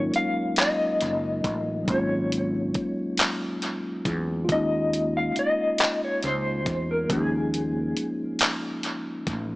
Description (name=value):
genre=slow six-eight R&B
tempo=46 BPM (dotted quarters)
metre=6/8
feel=straight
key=Eb minor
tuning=A4 = 441 Hz
part: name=mellow electric guitar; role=melody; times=0.0-8.0 s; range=Ab4 to F5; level=-27 LUFS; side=left 1 dB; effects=tremolo, tape echo
part: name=mellow tine electric piano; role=accompaniment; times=0.0-9.6 s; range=F3 to Bb4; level=-28 LUFS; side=equal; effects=medium stereo tremolo
part: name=mellow fretless electric bass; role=bass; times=0.0-9.6 s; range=Gb1 to Fb2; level=-30 LUFS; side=equal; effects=none
part: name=dusty soul sampler-style drum kit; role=drums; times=0.1-9.5 s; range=handclaps, hi-hat, kick drum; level=-26 LUFS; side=equal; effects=vintage 12-bit sampler grit, tape echo
room=light reverb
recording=echo-heavy mix, small speaker sound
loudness=-23 LUFS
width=side -20 dB against mid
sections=0.0-9.6 A section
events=none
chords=0.0 Ab9sus4; 4.5 Eb9sus4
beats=0.57 | 1.88 3.18 | 4.49 5.79 | 7.09 8.40